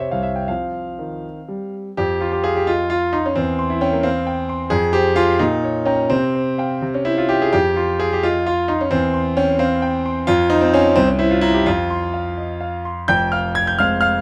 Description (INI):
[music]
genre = classical-period piano sonatina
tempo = 80-90 BPM (dotted quarters)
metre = 6/8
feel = rubato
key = F minor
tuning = A4 = 440 Hz
[part]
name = clear concert grand piano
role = solo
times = 0.0-14.2 s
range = F1 to Ab6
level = -19 LUFS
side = equal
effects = none
[sound]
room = light reverb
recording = close, detailed microphones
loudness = -19 LUFS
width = mono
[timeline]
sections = 0.0-2.0 A section; 2.0-13.1 A section; 13.1-14.2 A section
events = none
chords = 0.5 F5; 3.4 C/E; 4.7 Fm; 5.4 Gdim/Bb; 6.1 Csus4; 6.8 C; 7.5 F5; 8.9 C/E; 10.3 Fm; 11.0 C7; 11.7 F5; 13.1 Fm